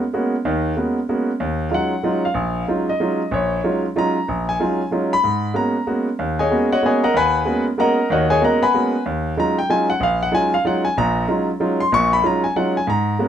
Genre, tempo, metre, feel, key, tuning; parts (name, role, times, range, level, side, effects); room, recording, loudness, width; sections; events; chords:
jazz; 188 BPM; 3/4; swing 63% on 8ths; Eb minor; A4 = 441 Hz
clear concert grand piano; solo; 0.0-13.3 s; Bb1 to Db6; -17 LUFS; equal
moderate studio ambience, RT60 0.5 s; -17 LUFS; side -9 dB against mid
0.0-1.4 A section; 1.4-13.3 B section
0.0 Abm11; 1.4 Ebm11; 5.2 Abm11; 9.0 Ebm11